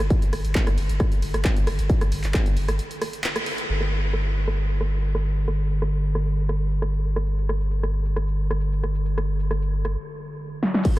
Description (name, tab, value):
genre	driving peak-time techno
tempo	134 BPM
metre	4/4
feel	straight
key	unclear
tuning	A4 = 444 Hz
part	saturated sub bass	bass	0.0-11.0 s	G1	-24 LUFS	equal	overdrive, sidechain pumping, low-pass filter
part	punchy analog drum machine	drums	0.0-11.0 s	crash cymbal, handclaps, hi-hat, ride cymbal, rim click, snare drum	-29 LUFS	right 1 dB	overdrive, sidechain pumping on hats, low-pass filter on hats, low-pass filter on snare, sidechain pumping on cymbals, low-pass filter on cymbals
part	electronic kick drum	drums	0.1-2.4, 10.8-10.9 s	none	-21 LUFS	equal	distortion
room	light reverb, digital ambience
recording	none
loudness	-21 LUFS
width	side -17 dB against mid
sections	0.0-3.7 A section; 3.7-10.9 B section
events	drop 0.0-3.7; break 2.8-3.7; band accent 3.2; stop 10.0-10.9; drum fill 10.6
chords	none